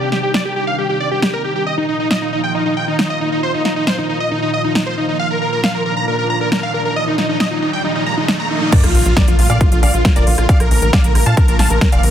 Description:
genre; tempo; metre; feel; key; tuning
uplifting trance; 136 BPM; 4/4; straight; Bb major; A4 = 440 Hz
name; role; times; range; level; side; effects
dense compressed supersaw; melody; 0.0-12.1 s; Eb4 to Bb5; -18 LUFS; equal; cassette tape, sidechain pumping, low-pass filter, tape echo
lush unison pad; sustained chords; 0.0-12.1 s; Bb2 to G4; -23 LUFS; right 1 dB; chorus, phaser, sidechain pumping
big-room dance drum kit; drums; 0.1-12.1 s; crash cymbal, hi-hat, rim click, snare drum; -20 LUFS; equal; overdrive, sidechain pumping on hats, sidechain pumping on cymbals
riser and impact; sound effects; 6.7-10.5 s; none; -23 LUFS; equal; none
clear concert grand piano; second line; 8.7-12.1 s; F4 to A5; -24 LUFS; left 1 dB; sidechain pumping, ping-pong delay
electronic kick drum; drums; 8.7-11.9 s; none; -13 LUFS; equal; overdrive
tight sequencer bass; bass; 8.8-12.1 s; F1 to Bb2; -16 LUFS; equal; sidechain pumping
room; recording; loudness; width
light reverb; dense, heavily limited modern master; -13 LUFS; side -10 dB against mid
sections
0.0-8.7 A section; 8.7-12.1 B section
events
riser 6.7-8.7; drop 8.7-12.1; impact 8.7-10.5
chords
0.0 Cmadd9; 1.7 Ebsus2; 8.7 Bbmaj7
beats
0.34 0.78 1.23 | 1.67 2.11 2.55 2.99 | 3.43 3.87 4.31 4.75 | 5.20 5.64 6.08 6.52 | 6.96 7.40 7.84 8.28 | 8.72 9.17 9.61 10.05 | 10.49 10.93 11.37 11.81

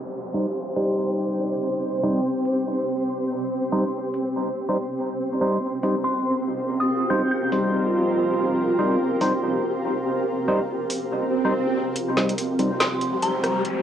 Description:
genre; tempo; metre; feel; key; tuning
deep dubstep; 142 BPM; 4/4; swing 58% on 16ths, half-time; C minor; A4 = 439 Hz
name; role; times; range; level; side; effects
granular cloud pad; sustained chords; 0.0-13.8 s; C4 to C5; -25 LUFS; equal; built-in reverb, cassette tape
downlifter, swell and riser; sound effects; 0.0-1.8, 11.3-13.8 s; none; -31 LUFS; right 2 dB; none
flickering grainy texture; texture; 0.0-13.8 s; G3 to C5; -29 LUFS; left 1 dB; built-in reverb, cassette tape
percussive organ stab; stabs; 0.3-12.7 s; G3 to C5; -26 LUFS; equal; chorus, cassette tape, dub echo
garage drum kit; drums; 0.8-13.7 s; hi-hat, rim click, snare drum; -25 LUFS; equal; overdrive, high-pass filter on hats, low-pass filter on hats, cassette tape, high-pass filter on snare, low-pass filter on snare
dark detuned synth bell; melody; 6.0-7.6, 12.8-13.6 s; Bb5 to G6; -27 LUFS; left 1 dB; chorus, cassette tape, dub echo
room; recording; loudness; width
wet studio reverb, RT60 0.6 s; home recording on cassette, low-pass filter; -21 LUFS; side -9 dB against mid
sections
0.0-12.0 A section; 12.0-13.8 B section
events
filter sweep on drum 0.0-12.0; filter sweep on synth stab 0.0-12.0; filter sweep 0.0-12.0; swell 11.3-12.0; build-up 12.0-13.8; riser 12.0-13.8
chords
0.0 Cm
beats
| 0.13 0.55 0.97 1.40 | 1.82 2.24 2.66 3.09 | 3.51 3.93 4.35 4.78 | 5.20 5.62 6.04 6.47 | 6.89 7.31 7.73 8.16 | 8.58 9.00 9.42 9.85 | 10.27 10.69 11.11 11.54 | 11.96 12.38 12.80 13.23 | 13.65

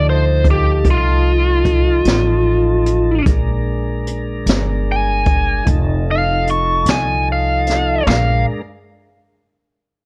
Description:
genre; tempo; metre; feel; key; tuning
slow blues; 50 BPM (dotted quarters); 12/8; straight; unclear; A4 = 440 Hz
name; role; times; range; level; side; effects
biting lead guitar; melody; 0.0-8.4 s; F4 to Db6; -19 LUFS; equal; overdrive, plate reverb
tonewheel organ; sustained chords; 0.0-8.6 s; F3 to Bb4; -26 LUFS; equal; slow rotary speaker, plate reverb
upright bass; bass; 0.0-8.4 s; F1 to D2; -20 LUFS; equal; none
jazz brush drum kit; drums; 0.4-8.3 s; hi-hat, kick drum, snare drum, toms; -20 LUFS; equal; none
room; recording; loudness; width
light reverb; worn, warbling old tape, cassette tape, warbly pitch drift; -16 LUFS; mono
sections
0.0-8.1 A section; 8.1-10.1 B section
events
none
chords
0.0 F7; 3.2 Bb7; 5.7 F7; 8.1 Bb7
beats
0.84 2.04 | 3.25 4.45 5.66 6.86 | 8.06

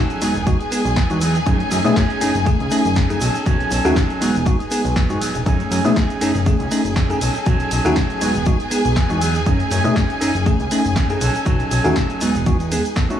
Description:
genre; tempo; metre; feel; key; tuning
filtered disco house; 120 BPM; 4/4; swing 54% on 16ths; F# dorian; A4 = 440 Hz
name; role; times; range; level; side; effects
warm studio string section; sustained chords; 0.0-13.2 s; G#4 to G#5; -25 LUFS; left 1 dB; sidechain pumping
electric guitar with an envelope filter; riff; 0.0-13.2 s; F#3 to A4; -25 LUFS; right 3 dB; sidechain pumping
fat analog bass; bass; 0.0-12.8 s; E1 to B2; -22 LUFS; equal; sidechain pumping
punchy analog drum machine; drums; 0.1-13.2 s; hi-hat, ride cymbal, shaker, snare drum; -28 LUFS; equal; sidechain pumping on hats, sidechain pumping on perc, sidechain pumping on cymbals
bell-like tine electric piano; accompaniment; 0.2-13.2 s; G#3 to A4; -21 LUFS; left 1 dB; phaser, sidechain pumping
egg shaker; percussion; 0.2-13.2 s; none; -35 LUFS; right 1 dB; none
electronic kick drum; drums; 0.5-13.1 s; none; -19 LUFS; equal; overdrive
room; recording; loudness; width
digital ambience; dry, gritty hardware recording, studio reverb; -16 LUFS; side -10 dB against mid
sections
0.0-13.2 A section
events
none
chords
0.2 Emaj9; 1.5 F#m69; 3.2 B9; 4.2 Emaj9; 5.5 F#m69; 7.2 B9; 8.2 Emaj9; 9.5 F#m69; 11.2 B9; 12.2 Emaj9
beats
0.46 0.96 | 1.46 1.96 2.46 2.96 | 3.46 3.96 4.46 4.96 | 5.46 5.96 6.46 6.96 | 7.46 7.96 8.46 8.96 | 9.46 9.96 10.46 10.96 | 11.46 11.96 12.46 12.96

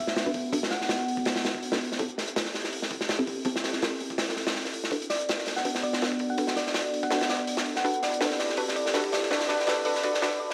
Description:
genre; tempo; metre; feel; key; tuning
drum and bass, jungle; 164 BPM; 4/4; swing 54% on 16ths; B phrygian; A4 = 444 Hz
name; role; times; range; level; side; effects
thumb-piano-like synth pluck; melody; 0.0-1.1, 5.1-10.5 s; D5 to F#5; -33 LUFS; equal; chorus, dub echo
warbly tape-like pad; sustained chords; 0.0-10.4 s; B3 to A4; -37 LUFS; equal; chorus, built-in reverb, vintage 12-bit sampler grit
crunchy breakbeat drum kit; drums; 0.1-10.5 s; hi-hat, kick drum, snare drum; -31 LUFS; equal; high-pass filter on kick, high-pass filter on hats, high-pass filter on snare, high-pass filter on room
filtered dub chord stab; stabs; 0.3-10.3 s; C4 to B4; -35 LUFS; equal; chorus, dub echo
room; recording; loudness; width
wet plate reverb, RT60 2.2 s; dark, warm production, vinyl crackle, high-pass filter; -28 LUFS; mono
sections
0.0-10.5 A section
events
build-up 0.0-10.5; filter sweep on ambient pad 0.0-10.5; filter sweep on synth stab 0.0-10.5; filter sweep on synth pluck 0.0-10.5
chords
0.0 Bm7; 2.0 Am7; 4.9 Bm7; 7.8 Am7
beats
0.16 | 0.53 0.89 1.26 1.63 | 1.99 2.36 2.72 3.09 | 3.46 3.82 4.19 4.55 | 4.92 5.28 5.65 6.02 | 6.38 6.75 7.11 7.48 | 7.84 8.21 8.58 8.94 | 9.31 9.67 10.04 10.41

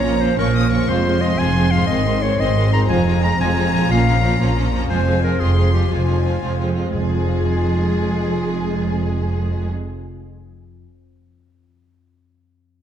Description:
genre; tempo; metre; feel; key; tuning
cinematic, heroic adventure film score; 119 BPM (dotted quarters); 6/8; straight; F minor; A4 = 442 Hz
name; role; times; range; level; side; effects
rich symphonic violin section; melody; 0.0-9.7 s; Ab4 to Eb6; -29 LUFS; left 4 dB; none
bright clarinet; second line; 0.0-9.7 s; F4 to Bb5; -24 LUFS; left 2 dB; none
clear symphonic violin section; second line; 0.0-9.7 s; C4 to Ab4; -26 LUFS; left 2 dB; none
warm symphonic viola section; accompaniment; 0.0-9.7 s; Eb3 to Bb3; -25 LUFS; right 2 dB; none
concert harp; arpeggios; 0.0-10.8 s; F2 to F5; -30 LUFS; left 8 dB; none
rich studio cello section; bass; 0.0-9.7 s; F2 to Bb2; -22 LUFS; right 2 dB; none
rich symphonic double bass section; bass; 0.0-9.7 s; F1 to Bb1; -21 LUFS; right 2 dB; none
timpani; percussion; 2.9-3.4, 6.9-10.1 s; F2; -31 LUFS; equal; none
room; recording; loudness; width
moderate scoring stage reverb, RT60 1.8 s; dark, warm production; -16 LUFS; side -9 dB against mid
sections
0.0-6.9 A section; 6.9-8.9 B section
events
none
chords
0.0 Bbm; 0.9 Fm; 1.9 Ab; 2.9 Fm; 3.9 Bbm; 4.9 Fm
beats
0.37 | 0.88 1.38 | 1.88 2.39 | 2.89 3.39 | 3.89 4.39 | 4.89 5.40 | 5.91 6.42 | 6.93 7.43 | 7.94 8.44

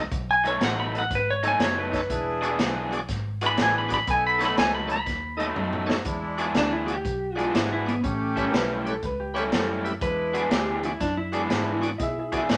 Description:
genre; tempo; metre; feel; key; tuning
electric blues shuffle; 121 BPM; 4/4; swing 67% on 8ths; E mixolydian; A4 = 440 Hz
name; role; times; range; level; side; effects
bright tonewheel organ; accompaniment; 0.0-12.4 s; D#4 to E5; -34 LUFS; equal; slow rotary speaker, overdrive
mellow horn section; stabs; 0.0-11.9 s; G#3 to B4; -34 LUFS; equal; none
vintage muted fingered electric bass; bass; 0.0-12.6 s; E1 to B2; -36 LUFS; equal; none
swinging big-band drum kit; drums; 0.1-12.6 s; hi-hat, kick drum, snare drum, toms; -31 LUFS; equal; none
clean lap steel guitar; melody; 0.3-12.6 s; B3 to B5; -28 LUFS; equal; none
crunchy overdriven guitar; riff; 0.4-12.6 s; A2 to G#4; -32 LUFS; equal; none
bright upright piano; second line; 8.5-12.6 s; G4 to E5; -33 LUFS; equal; none
room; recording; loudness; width
moderate studio reverb, RT60 0.7 s; none; -25 LUFS; mono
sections
0.0-6.1 A section; 6.1-12.6 B section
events
electric slide guitar solo 0.0-6.1; drum fill 5.6-6.1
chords
0.0 B7; 2.1 E7; 4.1 B7; 6.1 E7; 8.0 A7; 10.0 E7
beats
| 0.12 0.61 1.11 1.60 | 2.10 2.59 3.09 3.58 | 4.08 4.57 5.07 5.56 | 6.06 6.55 7.05 7.54 | 8.04 8.53 9.03 9.52 | 10.02 10.51 11.01 11.50 | 12.00 12.49

